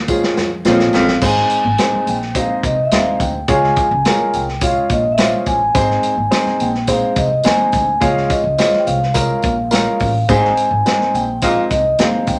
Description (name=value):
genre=uptempo 1960s-style soul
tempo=106 BPM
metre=4/4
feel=straight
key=Ab major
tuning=A4 = 439 Hz
part: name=upright bass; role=bass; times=0.0-12.4 s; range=Ab1 to F2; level=-25 LUFS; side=equal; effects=none
part: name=warm upright piano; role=accompaniment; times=0.1-12.4 s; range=F3 to Eb5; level=-22 LUFS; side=equal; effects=none
part: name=natural country drum kit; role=drums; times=0.1-12.4 s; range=crash cymbal, hi-hat, kick drum, snare drum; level=-22 LUFS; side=equal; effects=none
part: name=tambourine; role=percussion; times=0.1-12.4 s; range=none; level=-34 LUFS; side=equal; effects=none
part: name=vibraphone with soft mallets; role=melody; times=0.7-12.4 s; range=Eb5 to Ab5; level=-20 LUFS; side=equal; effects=none
part: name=warm baritone saxophone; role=riff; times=0.7-1.2, 10.3-11.7 s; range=F2 to Bb2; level=-20 LUFS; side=equal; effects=none
room=moderate club reverb, RT60 0.6 s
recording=none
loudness=-16 LUFS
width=mono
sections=0.0-1.2 A section; 1.2-12.4 B section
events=drum fill 0.0-1.2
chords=0.0 Db; 1.2 Ab; 3.5 Db; 5.8 Ab; 8.0 Db; 10.3 Ab